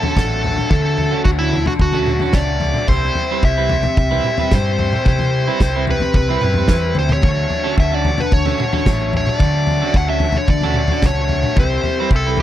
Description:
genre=indie rock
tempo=110 BPM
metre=4/4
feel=straight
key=D major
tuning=A4 = 439 Hz
part: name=nasal lead guitar with a parked wah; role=melody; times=0.0-12.4 s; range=E4 to F#5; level=-21 LUFS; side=right 2 dB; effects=overdrive
part: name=clean electric guitar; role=riff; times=0.0-12.4 s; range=D3 to B4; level=-25 LUFS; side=right 12 dB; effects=analog chorus, tape echo
part: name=raw garage guitar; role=riff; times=0.0-12.4 s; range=C3 to E4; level=-22 LUFS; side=left 5 dB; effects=overdrive, spring reverb
part: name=loose indie drum kit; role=drums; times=0.0-12.4 s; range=kick drum, snare drum, toms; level=-18 LUFS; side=equal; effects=none
part: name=hollow-body short-scale picked electric bass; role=bass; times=0.2-12.4 s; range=A1 to D3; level=-20 LUFS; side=equal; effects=none
room=little or no reverb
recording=dry, close 1970s-style studio recording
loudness=-14 LUFS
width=side -12 dB against mid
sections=0.0-12.4 A section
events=none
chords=0.0 Dmaj7; 2.9 Cmaj7; 7.2 Dmaj7; 11.6 Cmaj7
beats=0.17 | 0.72 1.26 1.80 2.35 | 2.89 3.43 3.98 4.52 | 5.06 5.60 6.15 6.69 | 7.23 7.78 8.32 8.86 | 9.40 9.94 10.49 11.03 | 11.57 12.11

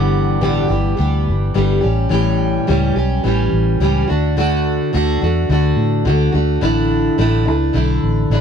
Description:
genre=acoustic pop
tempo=106 BPM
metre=4/4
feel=swing 55% on 16ths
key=D major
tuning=A4 = 440 Hz
part: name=fingerpicked plugged-in steel-string acoustic guitar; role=accompaniment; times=0.0-8.4 s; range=G2 to G4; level=-16 LUFS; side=equal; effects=double-tracked left and right
part: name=vintage muted fingered electric bass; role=bass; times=0.0-8.4 s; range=G1 to A2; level=-17 LUFS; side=equal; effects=none
room=little or no reverb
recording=dry, close 1970s-style studio recording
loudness=-14 LUFS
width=side -7 dB against mid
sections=0.0-8.4 A section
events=none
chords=0.0 G6; 1.8 A7; 4.1 D; 6.6 Asus4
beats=0.42 0.98 1.55 | 2.11 2.67 3.24 3.80 | 4.37 4.93 5.49 6.05 | 6.62 7.18 7.74 8.31

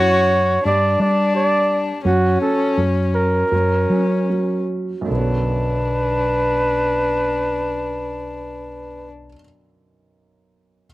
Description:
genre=acoustic folk-pop ballad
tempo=74-89 BPM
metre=4/4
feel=straight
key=B minor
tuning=A4 = 440 Hz
part: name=mellow flugelhorn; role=melody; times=0.0-9.1 s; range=F#4 to D5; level=-20 LUFS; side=right 1 dB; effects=none
part: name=dark violin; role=second line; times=0.0-9.1 s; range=C#4 to F#4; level=-24 LUFS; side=left 4 dB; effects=slapback echo
part: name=felt-muted upright piano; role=accompaniment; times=0.0-10.9 s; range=B1 to C#5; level=-27 LUFS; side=right 4 dB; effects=none
part: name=fretless electric bass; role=bass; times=0.0-9.3 s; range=B1 to G3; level=-22 LUFS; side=equal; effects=none
room=little or no reverb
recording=recorded outdoors, with no room sound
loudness=-16 LUFS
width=side -17 dB against mid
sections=0.0-5.1 A section; 5.1-8.3 B section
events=slowing down 0.0-5.1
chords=0.0 F#5; 0.7 G5; 2.1 F#5; 5.1 Bmadd9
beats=0.66 1.35 | 2.05 2.78 3.52 4.29 | 5.10 5.91 6.72 7.53

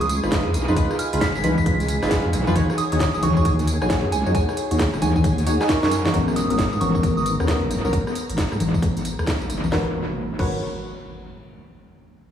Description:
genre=UK garage, two-step garage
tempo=134 BPM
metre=4/4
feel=swing 63% on 16ths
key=G# dorian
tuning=A4 = 439 Hz
part: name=soft synth bell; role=melody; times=0.0-7.3 s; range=G#5 to B6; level=-28 LUFS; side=right 3 dB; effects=chorus, dub echo
part: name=soft string machine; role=sustained chords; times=0.0-9.7 s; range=B3 to A#5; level=-32 LUFS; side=equal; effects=phaser, ensemble chorus, vintage 12-bit sampler grit, sidechain pumping
part: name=deep mellow chord stab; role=stabs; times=0.0-10.6 s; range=B3 to D#5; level=-26 LUFS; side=equal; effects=chorus, dub echo
part: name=deep soft wobble bass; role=bass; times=0.0-10.6 s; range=D#1 to G#2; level=-23 LUFS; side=equal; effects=chorus
part: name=garage drum kit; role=drums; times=0.0-10.5 s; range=congas, crash cymbal, hi-hat, rim click, snare drum, tambourine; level=-25 LUFS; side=equal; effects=dub echo
part: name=electronic kick drum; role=drums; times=0.3-10.5 s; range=none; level=-25 LUFS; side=equal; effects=none
part: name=impact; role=sound effects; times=6.2-11.5 s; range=none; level=-32 LUFS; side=equal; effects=none
room=moderate spring reverb, RT60 2.1 s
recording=echo-heavy mix, studio reverb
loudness=-19 LUFS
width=side -9 dB against mid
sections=0.0-6.1 A section; 6.1-9.7 B section; 9.7-11.5 C section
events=drop 0.0-6.1; drum fill 5.8-6.1; impact 6.1-7.9; filter sweep on wobble bass 6.1-9.7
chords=0.0 C#9; 2.6 D#m7; 6.1 G#m11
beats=0.32 | 0.76 1.21 1.66 2.11 | 2.56 3.00 3.45 3.90 | 4.35 4.79 5.24 5.69 | 6.14 6.58 7.03 7.48 | 7.93 8.38 8.82 9.27 | 9.72 10.17 10.62 11.06

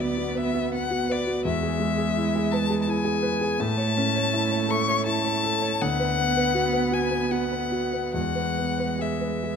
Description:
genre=classical, slow romantic movement for piano trio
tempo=69-85 BPM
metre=3/4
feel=rubato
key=unclear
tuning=A4 = 440 Hz
part: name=rich violin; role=melody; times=0.0-9.6 s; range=D5 to C#6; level=-27 LUFS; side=left 8 dB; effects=none
part: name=rich cello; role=second line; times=0.0-9.6 s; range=G#3 to B3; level=-30 LUFS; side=right 9 dB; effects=none
part: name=warm concert grand piano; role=accompaniment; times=0.0-9.6 s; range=D2 to C#5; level=-26 LUFS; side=equal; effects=none
room=moderate concert hall reverb, RT60 1.7 s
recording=close, detailed microphones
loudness=-22 LUFS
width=side -6 dB against mid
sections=0.0-9.6 A section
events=none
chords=0.0 Bm/D; 1.4 E; 3.6 A; 5.8 Bm/D; 8.2 E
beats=0.72 | 1.44 2.15 2.87 | 3.59 4.32 5.05 | 5.81 6.55 7.32 | 8.16 9.02

